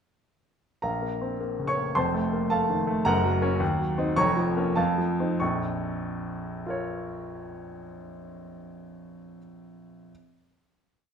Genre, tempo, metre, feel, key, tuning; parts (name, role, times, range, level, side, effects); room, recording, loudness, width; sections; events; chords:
classical, virtuoso piano study; 93-110 BPM; 2/4; rubato; Bb minor; A4 = 440 Hz
warm baby grand piano; solo; 0.8-10.1 s; F1 to Db6; -26 LUFS; equal
moderate recital hall reverb, RT60 1.2 s; minimal, uncompressed stereo recording; -24 LUFS; side -7 dB against mid
0.8-5.4 A section; 5.4-7.9 final chord
slowing down 2.5-5.4
0.8 Bbm; 2.0 F7; 3.1 Gb; 3.6 Cdim/Eb; 4.2 Bbm/F; 4.8 F7; 5.4 Bbm